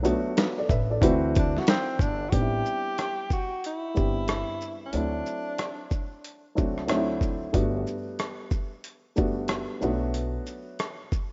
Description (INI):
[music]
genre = hip hop, jazz-hop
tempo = 92 BPM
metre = 4/4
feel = swing 65% on 16ths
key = A dorian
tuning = A4 = 440 Hz
[part]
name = dark upright piano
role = accompaniment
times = 0.0-11.0 s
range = E3 to E5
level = -31 LUFS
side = equal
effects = none
[part]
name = upright bass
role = bass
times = 0.0-10.4 s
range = F#1 to D2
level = -34 LUFS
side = equal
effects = none
[part]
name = dusty soul sampler-style drum kit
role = drums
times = 0.0-11.3 s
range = hi-hat, kick drum, rim click, shaker, snare drum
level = -29 LUFS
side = equal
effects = overdrive, vintage 12-bit sampler grit
[part]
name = warm tenor saxophone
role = melody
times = 1.4-6.1 s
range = C4 to G4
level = -33 LUFS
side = equal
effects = none
[sound]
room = light reverb, small room ambience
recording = rough home demo mix, nothing above 7.6 kHz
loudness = -27 LUFS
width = mono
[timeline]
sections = 0.0-2.3 A section; 2.3-11.3 B section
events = tenor saxophone solo 0.0-2.3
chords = 0.0 Bm7; 1.0 D13; 2.3 Am11 (rootless); 4.9 D7; 7.5 Gmaj9; 9.8 Bm7